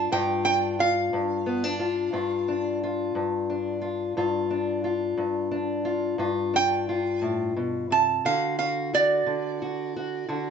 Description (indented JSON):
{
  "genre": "acoustic country blues, solo or duo",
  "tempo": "59 BPM (dotted quarters)",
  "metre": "12/8",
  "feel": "straight",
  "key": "unclear",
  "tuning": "A4 = 440 Hz",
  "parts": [
    { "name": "lap resonator guitar", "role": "melody", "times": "0.0-10.5 s", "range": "D5 to A5", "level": "-24 LUFS", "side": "right 5 dB", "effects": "plate reverb" },
    { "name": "fingerpicked steel-string acoustic guitar", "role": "accompaniment", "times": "0.0-10.5 s", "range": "G2 to F#4", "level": "-26 LUFS", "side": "left 3 dB", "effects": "none" }
  ],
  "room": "moderate studio reverb, RT60 0.5 s",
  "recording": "nothing above 7.8 kHz",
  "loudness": "-24 LUFS",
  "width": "side -6 dB against mid",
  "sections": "0.0-10.5 A section",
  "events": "resonator guitar played with a steel bar solo 0.0-10.5",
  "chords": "0.0 G7(no3); 8.3 D",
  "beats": "| 0.11 1.13 2.14 3.16 | 4.17 5.19 6.21 7.23 | 8.25 9.27 10.29"
}